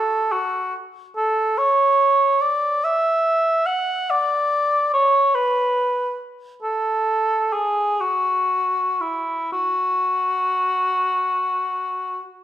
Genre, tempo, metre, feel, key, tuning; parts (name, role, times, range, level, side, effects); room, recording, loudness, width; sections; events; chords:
classical, free, expressive piece for unaccompanied cor anglais; 29-49 BPM (dotted quarters); 6/8; rubato; F# minor; A4 = 439 Hz
mellow cor anglais; solo; 0.0-12.2 s; E4 to F#5; -18 LUFS; equal
moderate recital hall reverb, RT60 1.4 s; recorded in a church or concert hall; -18 LUFS; side -12 dB against mid
0.0-12.4 A section